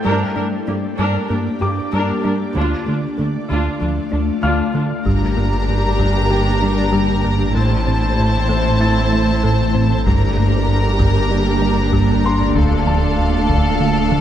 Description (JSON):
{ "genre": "cinematic, hybrid orchestral and electronic film score", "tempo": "96 BPM", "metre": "4/4", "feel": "straight", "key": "G dorian", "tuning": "A4 = 439 Hz", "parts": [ { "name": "warm symphonic viola section", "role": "accompaniment", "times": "0.0-14.2 s", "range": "A3 to Bb4", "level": "-25 LUFS", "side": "equal", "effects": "none" }, { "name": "ethereal airy pad", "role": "sustained chords", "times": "0.0-14.2 s", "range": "A3 to D5", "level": "-23 LUFS", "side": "equal", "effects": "ensemble chorus, built-in reverb" }, { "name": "thumb-piano-like synth pluck", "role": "arpeggios", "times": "0.0-14.2 s", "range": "D3 to G4", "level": "-25 LUFS", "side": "left 3 dB", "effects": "chorus, digital delay" }, { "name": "warm symphonic cello section", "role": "bass", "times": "0.0-14.2 s", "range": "D2 to A2", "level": "-24 LUFS", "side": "right 2 dB", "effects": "none" }, { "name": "bright baby grand piano", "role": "texture", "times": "0.0-14.2 s", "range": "G4 to A6", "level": "-28 LUFS", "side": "left 2 dB", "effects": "digital delay" }, { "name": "round analog bass", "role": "riff", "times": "0.1-14.2 s", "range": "D2 to A3", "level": "-22 LUFS", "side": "right 2 dB", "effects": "none" }, { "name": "warm symphonic violin section", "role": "second line", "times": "5.1-14.2 s", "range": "A4 to Bb5", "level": "-22 LUFS", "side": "left 2 dB", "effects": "none" }, { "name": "pure sine sub bass", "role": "bass", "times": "5.1-14.2 s", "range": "D1 to A1", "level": "-22 LUFS", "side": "equal", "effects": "none" }, { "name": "warm studio double bass section", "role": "bass", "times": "5.1-14.2 s", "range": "G1 to D2", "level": "-24 LUFS", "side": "right 2 dB", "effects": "none" }, { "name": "taiko ensemble", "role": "drums", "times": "5.1-6.3, 10.1-14.2 s", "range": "none", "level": "-22 LUFS", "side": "equal", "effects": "none" } ], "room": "moderate scoring stage reverb, RT60 1.7 s", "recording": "none", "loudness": "-15 LUFS", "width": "side -10 dB against mid", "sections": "0.0-5.1 A section; 5.1-14.2 B section", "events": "none", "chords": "0.1 Gm; 2.6 Dm; 5.1 Gm; 7.6 Am; 10.1 Gm; 12.6 Dm", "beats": "| 0.06 0.68 1.31 1.93 | 2.56 3.18 3.81 4.43 | 5.06 5.68 6.31 6.93 | 7.56 8.18 8.81 9.43 | 10.06 10.68 11.31 11.93 | 12.56 13.18 13.81" }